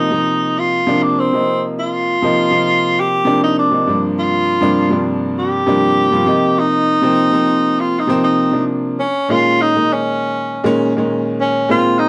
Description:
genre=jazz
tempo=100 BPM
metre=4/4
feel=straight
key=Bb minor from 9.0 s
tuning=A4 = 439 Hz
part: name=clear tenor saxophone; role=melody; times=0.0-12.1 s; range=C4 to G4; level=-18 LUFS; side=equal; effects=slapback echo
part: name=bright grand piano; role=accompaniment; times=0.0-12.1 s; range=G2 to F4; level=-19 LUFS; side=equal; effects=none
room=moderate studio reverb, RT60 0.5 s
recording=dark, warm production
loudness=-16 LUFS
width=mono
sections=0.0-9.0 A section; 9.0-12.1 B section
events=none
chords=0.0 F5; 3.9 Gm7; 6.3 Cm9; 9.0 Bbm11

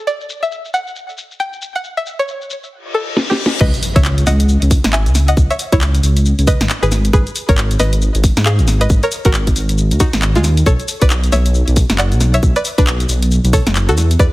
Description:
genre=UK garage, two-step garage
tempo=136 BPM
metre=4/4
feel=swing 60% on 16ths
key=unclear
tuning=A4 = 439 Hz
part: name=string-like resonator pluck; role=melody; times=0.1-14.3 s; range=G#3 to G#5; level=-20 LUFS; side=equal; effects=chorus, tape echo
part: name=garage drum kit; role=drums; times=0.1-14.3 s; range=crash cymbal, handclaps, hi-hat, shaker, snare drum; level=-20 LUFS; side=equal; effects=low-pass filter on perc, studio reverb, low-pass filter on snare, low-pass filter on cymbals, low-pass filter on hats
part: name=reverse cymbal and impact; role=sound effects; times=2.8-5.4 s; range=none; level=-24 LUFS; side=left 1 dB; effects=none
part: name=dark detuned saw bass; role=bass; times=3.6-14.3 s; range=F#1 to G#2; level=-14 LUFS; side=equal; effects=none
part: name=electronic kick drum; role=drums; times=3.6-14.3 s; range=none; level=-13 LUFS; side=equal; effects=studio reverb
room=little or no reverb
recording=heavily compressed radio sound, multiband compression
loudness=-12 LUFS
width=side -18 dB against mid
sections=0.0-3.6 A section; 3.6-14.3 B section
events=reverse cymbal 2.8-3.6; drum fill 3.2-3.6; drop 3.6-14.3; impact 3.6-5.4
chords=0.0 N.C.; 10.7 B5

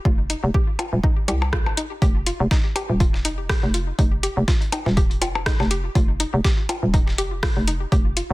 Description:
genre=minimal techno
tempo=122 BPM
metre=4/4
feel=swing 56% on 16ths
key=unclear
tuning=A4 = 442 Hz
part: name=hollow square pluck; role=riff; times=0.1-8.2 s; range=Eb4 to G4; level=-30 LUFS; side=left 1 dB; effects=chorus, sidechain pumping, ping-pong delay
part: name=hollow knocking FM bass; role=bass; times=0.1-8.3 s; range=Eb1 to C2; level=-23 LUFS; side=equal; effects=sidechain pumping
part: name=electronic kick drum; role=drums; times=0.1-8.0 s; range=none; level=-20 LUFS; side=equal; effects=none
part: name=techno drum kit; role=drums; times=0.3-8.3 s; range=hi-hat, rim click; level=-27 LUFS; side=equal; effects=soft clipping on snare
part: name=percussion blips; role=percussion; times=0.8-6.8 s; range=none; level=-29 LUFS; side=left 3 dB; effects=ping-pong delay
part: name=dusty soul sampler-style drum kit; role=drums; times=2.0-8.3 s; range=hi-hat, snare drum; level=-32 LUFS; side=left 1 dB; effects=high-pass filter on hats, high-pass filter on snare
room=digital ambience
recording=dense, heavily limited modern master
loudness=-18 LUFS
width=side -19 dB against mid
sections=0.0-8.3 A section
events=none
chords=0.0 F5

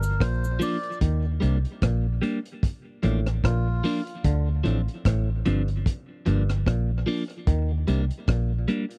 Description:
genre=dub reggae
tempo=74 BPM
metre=4/4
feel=swing 58% on 16ths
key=unclear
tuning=A4 = 440 Hz
part: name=melodica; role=melody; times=0.0-4.0 s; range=F4 to D5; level=-37 LUFS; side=equal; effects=tape echo
part: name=clav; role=riff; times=0.0-8.5 s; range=G2 to Eb3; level=-37 LUFS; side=equal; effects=tape echo
part: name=vintage muted fingered electric bass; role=bass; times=0.0-8.7 s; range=G1 to Eb2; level=-26 LUFS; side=equal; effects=none
part: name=crunchy breakbeat drum kit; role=drums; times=0.0-9.0 s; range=hi-hat, kick drum, rim click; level=-27 LUFS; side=equal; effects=none
part: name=cabasa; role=percussion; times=0.0-0.8 s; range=none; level=-47 LUFS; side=equal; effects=tape echo
part: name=clean electric guitar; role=accompaniment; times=0.6-8.8 s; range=F3 to D4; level=-30 LUFS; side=equal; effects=phaser, tape echo
room=small room reverb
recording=dry, close 1970s-style studio recording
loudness=-25 LUFS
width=mono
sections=0.0-9.0 A section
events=part muted 1.0-9.0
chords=0.0 Gm7; 1.0 Ebmaj7; 2.6 Bbmaj7/A; 4.2 Dm7; 5.9 Gm7; 7.5 Ebmaj7

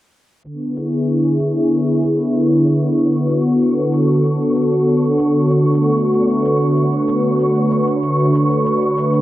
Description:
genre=folktronica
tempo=95 BPM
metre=4/4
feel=straight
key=unclear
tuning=A4 = 440 Hz
part: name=warm analog pad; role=sustained chords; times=0.4-9.2 s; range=D3 to B4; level=-14 LUFS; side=equal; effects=chorus, cassette tape
part: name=shaker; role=drums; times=0.4-9.2 s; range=none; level=-50 LUFS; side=equal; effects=none
part: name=flickering grainy texture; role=texture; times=1.3-9.2 s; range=C#6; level=-26 LUFS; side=right 2 dB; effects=built-in reverb, cassette tape
room=wet studio reverb, RT60 0.5 s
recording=home recording on cassette, low-pass filter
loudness=-14 LUFS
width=side -15 dB against mid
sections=0.4-9.2 A section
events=filter sweep 0.4-9.2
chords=0.4 C#m7/D; 3.0 E7sus4/D; 5.5 D6

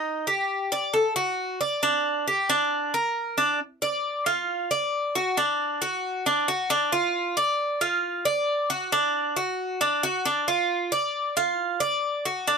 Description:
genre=latin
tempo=135 BPM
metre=4/4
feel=straight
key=unclear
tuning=A4 = 440 Hz
part: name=Cuban tres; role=solo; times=0.0-12.6 s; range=D4 to D5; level=-23 LUFS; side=right 1 dB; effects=none
room=little or no reverb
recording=none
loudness=-23 LUFS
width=side -5 dB against mid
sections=0.0-3.6 A section; 3.6-12.6 B section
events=none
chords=none

